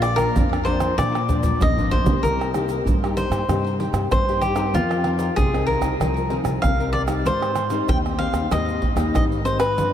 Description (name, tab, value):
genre	samba and choro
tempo	96 BPM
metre	4/4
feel	straight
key	C minor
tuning	A4 = 440 Hz
part	cavaquinho	melody	0.0-9.9 s	F4 to G5	-23 LUFS	left 1 dB	ping-pong delay
part	nylon-string guitar	accompaniment	0.0-9.9 s	F2 to Bb4	-27 LUFS	left 4 dB	ensemble chorus
part	upright bass	bass	0.0-9.9 s	Ab1 to Bb2	-25 LUFS	equal	none
part	egg shaker, pandeiro, tamborim and surdo	percussion	0.0-9.9 s	none	-23 LUFS	right 1 dB	none
room	moderate huge ambient reverb, RT60 4.7 s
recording	dreamy mix soaked in reverb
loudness	-18 LUFS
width	side -10 dB against mid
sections	0.0-2.2 A section; 2.2-9.9 B section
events	drum fill 1.0-2.2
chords	0.0 Bb; 2.2 Cm7; 4.7 F7sus4; 7.3 Abmaj7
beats	0.35 0.98 1.61 | 2.23 2.86 3.49 4.12 | 4.75 5.37 6.00 6.63 | 7.26 7.89 8.51 9.14 | 9.77